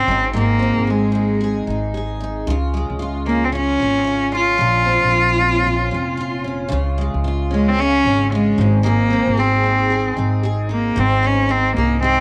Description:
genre	acoustic pop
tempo	113 BPM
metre	4/4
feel	swing 60% on 16ths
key	unclear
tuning	A4 = 440 Hz
part	clear cello	melody	0.0-12.2 s	Ab3 to F4	-20 LUFS	equal	cassette tape, analog delay
part	picked steel-string acoustic guitar	accompaniment	0.0-12.2 s	Ab2 to Ab4	-26 LUFS	equal	double-tracked, cassette tape
part	upright bass	bass	0.0-12.2 s	F1 to Db2	-24 LUFS	equal	none
room	moderate studio ambience, RT60 0.5 s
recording	home recording on cassette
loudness	-18 LUFS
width	mono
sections	0.0-11.0 A section; 11.0-12.2 B section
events	none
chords	0.1 Ab; 2.5 Db; 4.6 Bbmadd9; 6.7 Db; 8.6 Ab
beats	| 0.34 0.87 1.40 1.93 | 2.46 3.00 3.52 4.06 | 4.59 5.12 5.65 6.18 | 6.71 7.24 7.77 8.30 | 8.84 9.37 9.90 10.43 | 10.96 11.49 12.03

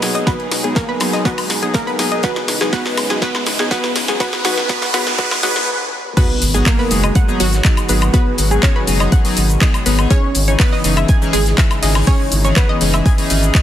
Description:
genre	progressive house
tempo	122 BPM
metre	4/4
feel	straight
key	G# minor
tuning	A4 = 438 Hz
part	wide unison pluck	melody	0.0-13.2 s	F#3 to C#5	-22 LUFS	right 1 dB	phaser, sidechain pumping, tape echo
part	supersaw pad	sustained chords	0.0-13.6 s	G#2 to G#4	-26 LUFS	right 1 dB	phaser, sidechain pumping
part	chorused polysynth	stabs	0.0-13.6 s	E3 to G#4	-22 LUFS	left 2 dB	sidechain pumping, tape echo
part	damped 70s drum kit	drums	0.0-13.6 s	hi-hat, snare drum	-32 LUFS	left 4 dB	none
part	house drum kit	drums	0.0-13.6 s	crash cymbal, handclaps, hi-hat, shaker, snare drum, woodblock	-20 LUFS	left 1 dB	soft clipping on snare, high-pass filter on snare, small room ambience, sidechain pumping on hats, high-pass filter on hats, sidechain pumping on perc, high-pass filter on perc, sidechain pumping on cymbals, high-pass filter on cymbals
part	riser, noise sweep and impact	sound effects	0.5-8.1 s	none	-25 LUFS	right 1 dB	none
part	analog pluck	arpeggios	0.1-13.6 s	F#4 to G#5	-24 LUFS	left 1 dB	chorus, cassette tape, sidechain pumping, tape echo
part	electronic kick drum	drums	0.3-13.6 s	none	-14 LUFS	equal	overdrive, small room ambience
part	round analog bass	bass	6.4-13.5 s	F#1 to G#1	-16 LUFS	equal	sidechain pumping
room	light reverb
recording	dense, heavily limited modern master, high-pass filter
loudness	-13 LUFS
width	side -11 dB against mid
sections	0.0-6.2 A section; 6.2-13.6 B section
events	build-up 0.0-6.2; drum fill 0.0-5.7; filter sweep on analog polysynth 0.0-6.2; filter sweep on synth pluck 0.0-6.2; filter sweep 0.0-6.2; riser 0.5-5.7; noise sweep 4.2-6.2; stop 5.7-6.2; drop 6.2-13.6; impact 6.2-8.1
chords	0.0 G#m7; 2.2 C#madd9/G#; 6.2 G#m7; 10.1 C#madd9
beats	| 0.27 0.76 1.25 1.75 | 2.24 2.73 3.22 3.71 | 4.20 4.70 5.19 5.68 | 6.17 6.66 7.16 7.65 | 8.14 8.63 9.12 9.61 | 10.11 10.60 11.09 11.58 | 12.07 12.56 13.06 13.55

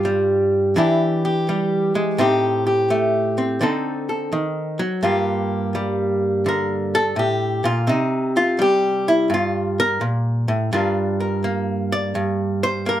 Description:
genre	solo jazz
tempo	84 BPM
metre	4/4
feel	swing 66% on 8ths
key	G minor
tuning	A4 = 441 Hz
part	archtop guitar, miked and amplified	solo	0.0-13.0 s	G2 to D5	-18 LUFS	equal	none
room	wet studio ambience, RT60 0.5 s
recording	none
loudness	-18 LUFS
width	side -12 dB against mid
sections	0.0-5.0 A section; 5.0-13.0 B section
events	hollow-body jazz guitar solo 5.0-13.0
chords	0.0 Fsus2/G; 0.8 E7#9; 2.2 Am7b5; 3.6 D7b9; 5.0 Gm7; 7.9 C5; 10.7 Gm7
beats	0.05 0.76 1.48 | 2.19 2.90 3.61 4.32 | 5.04 5.75 6.46 7.17 | 7.88 8.60 9.31 10.02 | 10.73 11.44 12.15 12.87

